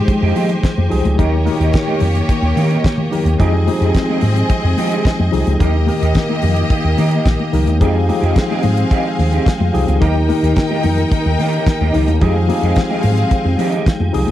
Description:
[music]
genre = disco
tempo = 109 BPM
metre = 4/4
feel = straight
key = F minor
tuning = A4 = 445 Hz
[part]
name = clear studio string section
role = second line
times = 0.0-14.3 s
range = Ab3 to G5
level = -21 LUFS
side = left 2 dB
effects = none
[part]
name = tine electric piano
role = accompaniment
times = 0.0-14.3 s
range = Eb3 to Bb4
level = -20 LUFS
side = left 2 dB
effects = overdrive, fast stereo tremolo
[part]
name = tonewheel organ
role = sustained chords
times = 0.0-14.3 s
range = Eb3 to G5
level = -26 LUFS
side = right 2 dB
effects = overdrive, chorus vibrato, wide subtle chorus
[part]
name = electric guitar through a small old amp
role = accompaniment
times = 0.1-14.3 s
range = Ab3 to G4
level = -25 LUFS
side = right 7 dB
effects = ensemble chorus
[part]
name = damped 70s drum kit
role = drums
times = 0.1-14.3 s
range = hi-hat, kick drum, snare drum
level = -17 LUFS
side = equal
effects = none
[part]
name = congas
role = percussion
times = 0.1-14.3 s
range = none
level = -26 LUFS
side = left 6 dB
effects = none
[part]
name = fingered electric bass with an envelope filter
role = bass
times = 0.2-14.3 s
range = Bb1 to F3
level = -16 LUFS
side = equal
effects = none
[sound]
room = little or no reverb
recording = dry, close 1970s-style studio recording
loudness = -13 LUFS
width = side -13 dB against mid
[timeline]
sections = 0.0-14.3 A section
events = none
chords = 0.0 Fm9; 1.2 Eb; 3.4 Fm9; 5.6 Eb; 7.8 Fm9; 10.0 Eb; 12.2 Fm9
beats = 0.08 0.64 | 1.19 1.74 2.29 2.84 | 3.40 3.95 4.50 5.05 | 5.60 6.15 6.71 7.26 | 7.81 8.36 8.91 9.46 | 10.01 10.56 11.11 11.66 | 12.21 12.77 13.32 13.87

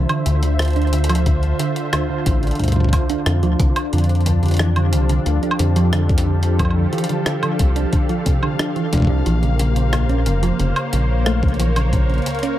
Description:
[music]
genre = IDM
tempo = 90 BPM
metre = 4/4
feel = straight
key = unclear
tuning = A4 = 440 Hz
[part]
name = warm analog pad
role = sustained chords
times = 0.0-12.6 s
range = D3 to F5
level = -23 LUFS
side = left 1 dB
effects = chorus
[part]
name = thumb-piano-like synth pluck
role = arpeggios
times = 0.0-12.5 s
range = Db2 to D4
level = -23 LUFS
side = right 2 dB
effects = chorus, dub echo
[part]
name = round analog bass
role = bass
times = 0.0-12.2 s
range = F1 to F2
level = -18 LUFS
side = equal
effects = tube saturation
[part]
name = jungle sampler-style drum kit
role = drums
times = 0.1-12.6 s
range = hi-hat, rim click, woodblock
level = -26 LUFS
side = equal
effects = small room ambience, dub echo
[part]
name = electronic kick drum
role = drums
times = 1.3-12.1 s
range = none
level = -18 LUFS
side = equal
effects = small room ambience
[sound]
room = digital ambience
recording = echo-heavy mix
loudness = -16 LUFS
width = side -13 dB against mid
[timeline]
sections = 0.0-12.6 A section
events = none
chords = 0.0 Dm7; 3.9 F6; 9.3 Bbmadd9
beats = 0.59 | 1.26 1.93 2.60 3.26 | 3.93 4.59 5.26 5.93 | 6.59 7.26 7.93 8.60 | 9.26 9.93 10.60 11.26 | 11.93

